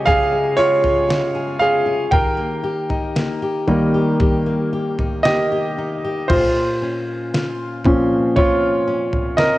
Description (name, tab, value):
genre	pop ballad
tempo	58 BPM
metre	4/4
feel	straight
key	unclear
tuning	A4 = 440 Hz
part	clear baby grand piano	accompaniment	0.0-9.6 s	Bb2 to Ab5	-17 LUFS	equal	cassette tape
part	fingerpicked steel-string acoustic guitar	arpeggios	0.0-9.6 s	Bb2 to Ab4	-25 LUFS	left 3 dB	cassette tape, analog delay
part	dusty soul sampler-style drum kit	drums	0.1-9.6 s	crash cymbal, kick drum, snare drum, toms	-22 LUFS	equal	cassette tape
room	light reverb, small room reverb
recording	home recording on cassette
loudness	-16 LUFS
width	side -16 dB against mid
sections	0.0-6.3 A section; 6.3-9.6 B section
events	grand piano solo 0.0-6.3, 6.3-9.6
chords	0.0 Db; 2.1 Eb; 6.3 Bbmadd9